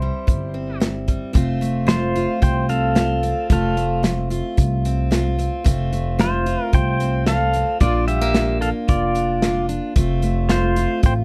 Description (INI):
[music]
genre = honky-tonk and classic country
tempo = 112 BPM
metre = 4/4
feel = straight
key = unclear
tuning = A4 = 441 Hz
[part]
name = pedal steel guitar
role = melody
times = 0.0-11.1 s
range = F4 to G5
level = -24 LUFS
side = equal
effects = none
[part]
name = picked steel-string acoustic guitar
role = accompaniment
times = 0.0-11.2 s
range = F2 to F4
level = -26 LUFS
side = equal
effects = none
[part]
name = upright bass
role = bass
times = 0.0-11.2 s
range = F1 to C2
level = -25 LUFS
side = equal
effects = none
[part]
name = natural country drum kit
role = drums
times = 0.3-11.2 s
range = hi-hat, kick drum, snare drum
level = -22 LUFS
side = equal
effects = none
[sound]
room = light reverb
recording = dark, warm production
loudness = -20 LUFS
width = mono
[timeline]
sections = 0.0-1.4 A section; 1.4-11.2 B section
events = none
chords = 0.0 C; 1.4 F; 7.8 Bb; 10.0 F